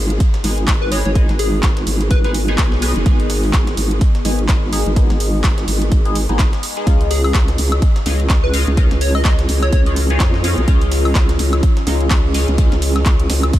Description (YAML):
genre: bass house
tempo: 126 BPM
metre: 4/4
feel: swing 58% on 16ths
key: G# dorian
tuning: A4 = 436 Hz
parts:
  - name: vowel-sweep wobble bass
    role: bass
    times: 0.0-13.5 s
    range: F#1 to E#2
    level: -17 LUFS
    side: equal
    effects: chorus, tube saturation, sidechain pumping
  - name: deep dark ambient pad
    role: texture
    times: 0.4-13.6 s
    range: B3 to G#5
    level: -28 LUFS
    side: left 1 dB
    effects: chorus, built-in reverb, sidechain pumping
  - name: house drum kit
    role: drums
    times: 0.1-13.6 s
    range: handclaps, hi-hat, woodblock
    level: -24 LUFS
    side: equal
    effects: overdrive
  - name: breakbeat sampler-style drum kit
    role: drums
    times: 0.2-13.6 s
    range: hi-hat, snare drum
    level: -32 LUFS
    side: equal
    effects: none
  - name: electronic kick drum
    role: drums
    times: 0.2-13.6 s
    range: none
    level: -15 LUFS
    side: equal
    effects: none
  - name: band-passed chord stab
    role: stabs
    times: 0.4-12.7 s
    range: G#3 to G#4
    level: -26 LUFS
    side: left 2 dB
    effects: phaser, analog chorus, sidechain pumping, ping-pong delay
  - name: plucky unison lead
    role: melody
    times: 0.8-2.3, 7.1-9.8 s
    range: G#4 to D#5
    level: -27 LUFS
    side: left 2 dB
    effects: ping-pong delay
room: little or no reverb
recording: none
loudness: -13 LUFS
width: side -14 dB against mid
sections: 0.0-13.6 A section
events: none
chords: 0.0 G#m; 6.9 C#add9